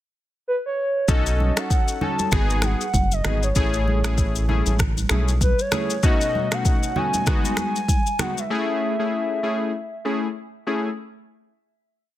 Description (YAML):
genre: afrobeats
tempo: 97 BPM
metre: 4/4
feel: swing 58% on 16ths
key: unclear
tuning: A4 = 440 Hz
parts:
  - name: hollow clarinet-like synth lead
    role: melody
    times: 0.5-10.4 s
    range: B4 to A5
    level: -26 LUFS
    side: equal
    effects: chorus
  - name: warm analog keys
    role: accompaniment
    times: 1.1-10.9 s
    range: B2 to A4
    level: -26 LUFS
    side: left 2 dB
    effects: chorus
  - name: round analog bass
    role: bass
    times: 1.1-5.5 s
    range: F#1 to B1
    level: -22 LUFS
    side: equal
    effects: none
  - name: afro-pop drum kit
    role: drums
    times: 1.1-8.5 s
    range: finger snaps, kick drum, rim click, shaker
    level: -22 LUFS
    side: equal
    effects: soft clipping on snare
  - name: congas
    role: percussion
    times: 1.4-8.4 s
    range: none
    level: -30 LUFS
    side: right 3 dB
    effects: none
room: digital ambience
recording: dense, heavily limited modern master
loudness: -20 LUFS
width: side -14 dB against mid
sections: 0.0-1.1 pickup bar; 1.1-11.0 verse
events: none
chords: 0.0 N.C.; 1.1 B7; 2.3 G#m7; 3.6 Amaj9; 6.0 B7; 7.3 G#m7; 8.5 Amaj7